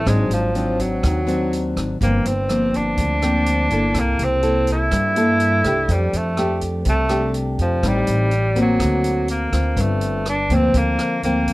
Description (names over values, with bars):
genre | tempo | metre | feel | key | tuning
bossa nova | 124 BPM | 4/4 | straight | unclear | A4 = 440 Hz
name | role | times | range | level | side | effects
breathy tenor saxophone | melody | 0.0-11.5 s | F3 to E4 | -21 LUFS | right 1 dB | none
nylon-string guitar | accompaniment | 0.0-11.5 s | G2 to A4 | -21 LUFS | left 1 dB | none
upright bass | bass | 0.0-11.5 s | G1 to G2 | -22 LUFS | equal | none
vintage drum kit | drums | 0.1-11.5 s | hi-hat, kick drum, rim click | -27 LUFS | equal | none
room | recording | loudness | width
light reverb | dark, warm production | -17 LUFS | side -19 dB against mid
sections
0.0-9.8 A section; 9.8-11.5 B section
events
none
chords
0.1 Ab7#11; 2.0 Gm11; 3.9 C13; 5.9 F69; 7.8 Am7b5; 8.8 D7b13; 9.8 Gm11